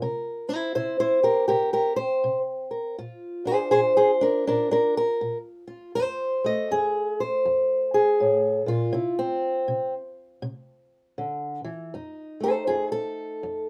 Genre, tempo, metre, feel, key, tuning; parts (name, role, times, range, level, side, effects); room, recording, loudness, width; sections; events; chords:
acoustic country blues, solo or duo; 80 BPM; 4/4; swing 62% on 8ths; F mixolydian; A4 = 440 Hz
fingerpicked old ladder-braced acoustic guitar; solo; 0.0-13.7 s; F2 to Eb5; -25 LUFS; equal
light reverb; -24 LUFS; mono
0.0-11.9 A section; 11.9-13.7 B section
steel-string acoustic guitar solo 0.0-11.9
0.0 C7; 3.0 Bb; 6.0 F; 8.9 C; 11.9 F7